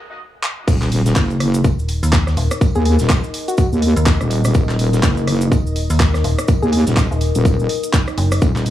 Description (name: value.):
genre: bass house.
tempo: 124 BPM.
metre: 4/4.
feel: swing 59% on 16ths.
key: Eb minor.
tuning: A4 = 440 Hz.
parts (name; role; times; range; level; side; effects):
garage drum kit; drums; 0.4-8.7 s; crash cymbal, handclaps, hi-hat, rim click; -24 LUFS; equal; overdrive, high-pass filter on snare, high-pass filter on hats, high-pass filter on cymbals.
wobble bass; bass; 0.7-8.7 s; Eb1 to Eb2; -16 LUFS; equal; chorus, tube saturation, sidechain pumping.
electronic kick drum; drums; 0.7-8.5 s; none; -15 LUFS; equal; overdrive.
modern studio drum kit; drums; 0.7-8.7 s; hi-hat, snare drum, tambourine; -35 LUFS; equal; none.
cabasa; percussion; 0.7-8.6 s; none; -34 LUFS; right 2 dB; none.
sub drop; sound effects; 0.7-2.6 s; none; -30 LUFS; equal; none.
deep dark ambient pad; texture; 1.6-8.7 s; Eb4 to Eb5; -26 LUFS; left 3 dB; chorus, built-in reverb, sidechain pumping.
metallic FM bass; bass; 1.6-8.4 s; Eb1 to Eb2; -17 LUFS; equal; overdrive, sidechain pumping.
soft struck synth lead; melody; 2.8-3.7, 6.6-6.8 s; Gb4 to Ab4; -26 LUFS; left 2 dB; chorus, dub echo.
room: small room ambience.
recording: high-pass filter.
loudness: -14 LUFS.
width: side -13 dB against mid.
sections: 0.7-8.7 A section.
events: break 0.0-0.7; drum fill 0.4; drop 0.7-8.7; impact 0.7-2.6.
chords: 0.0 N.C.; 0.7 Ebm.